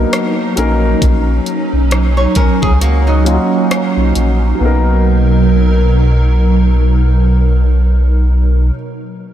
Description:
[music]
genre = contemporary R&B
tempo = 67 BPM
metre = 4/4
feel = swing 58% on 16ths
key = B major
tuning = A4 = 441 Hz
[part]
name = dark concert grand piano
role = accompaniment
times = 0.0-9.3 s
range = F#3 to A#4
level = -20 LUFS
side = left 3 dB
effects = lush chorus
[part]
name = hollow soft pad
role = sustained chords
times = 0.0-8.7 s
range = B2 to A#4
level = -16 LUFS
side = right 2 dB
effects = ensemble chorus
[part]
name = warm sub bass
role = bass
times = 0.0-8.7 s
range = A#1 to C#2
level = -12 LUFS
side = equal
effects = none
[part]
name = smooth R&B drum kit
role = drums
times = 0.1-4.4 s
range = hi-hat, kick drum, rim click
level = -18 LUFS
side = equal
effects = none
[part]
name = flamenco guitar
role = arpeggios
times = 2.2-4.4 s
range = F#3 to C#5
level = -20 LUFS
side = right 1 dB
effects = ping-pong delay
[sound]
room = moderate huge ambient reverb, RT60 5.1 s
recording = dreamy mix soaked in reverb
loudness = -10 LUFS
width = side -11 dB against mid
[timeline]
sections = 0.0-4.6 A section; 4.6-8.2 B section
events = kick muted 2.8-4.6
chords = 0.0 Bmaj7; 0.6 D#m7/A#; 4.6 Bmaj7

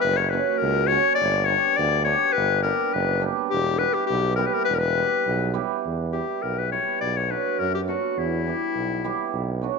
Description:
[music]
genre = balkan folk, Balkan wedding band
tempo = 103 BPM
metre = 2/4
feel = swing 55% on 16ths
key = E dorian sharp4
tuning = A4 = 440 Hz
[part]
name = bright clarinet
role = melody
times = 0.0-9.6 s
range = E4 to D5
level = -23 LUFS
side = left 9 dB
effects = none
[part]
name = cimbalom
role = accompaniment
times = 0.0-9.8 s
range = F#3 to G4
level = -27 LUFS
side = right 14 dB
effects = none
[part]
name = clear tuba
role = bass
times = 0.0-9.7 s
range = E1 to F#2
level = -27 LUFS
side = right 2 dB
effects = none
[sound]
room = moderate echo chamber reverb, RT60 1.9 s, studio ambience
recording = 1960s-style stereo with parts hard left and right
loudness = -21 LUFS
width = side -4 dB against mid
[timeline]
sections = 0.0-5.8 A section; 5.8-9.8 B section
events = clarinet solo 5.8-9.8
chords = 0.0 F#; 1.2 G; 3.5 Em; 7.0 Bm; 8.2 Em

